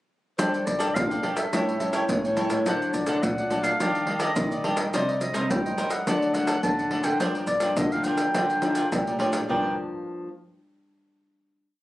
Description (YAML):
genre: samba and choro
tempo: 105 BPM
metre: 4/4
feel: straight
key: G minor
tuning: A4 = 444 Hz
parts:
  - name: mellow clarinet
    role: melody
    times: 0.4-9.8 s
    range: C5 to A5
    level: -28 LUFS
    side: equal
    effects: none
  - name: cavaquinho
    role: accompaniment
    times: 0.4-9.7 s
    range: D4 to G5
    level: -31 LUFS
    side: right 1 dB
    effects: none
  - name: nylon-string guitar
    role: accompaniment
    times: 0.4-10.3 s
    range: G2 to A4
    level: -31 LUFS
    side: left 3 dB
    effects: none
  - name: nylon-string guitar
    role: bass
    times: 0.4-9.8 s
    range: G2 to G3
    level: -29 LUFS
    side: equal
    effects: none
  - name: maracas, surdo and pandeiro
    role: percussion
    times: 0.4-9.6 s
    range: none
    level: -28 LUFS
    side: equal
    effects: none
  - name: warm trombone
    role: second line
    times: 8.6-9.8 s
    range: Eb4 to Bb4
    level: -31 LUFS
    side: equal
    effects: none
room: moderate small room reverb, RT60 0.5 s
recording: recorded on a phone in the room, club reverb, compression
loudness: -23 LUFS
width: side -16 dB against mid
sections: 0.4-9.5 A section; 9.5-11.8 final chord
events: none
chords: 0.4 Gsus2; 1.5 A7; 2.7 D; 3.8 Ebmaj7; 4.9 Cm7; 6.1 D; 7.2 Gm7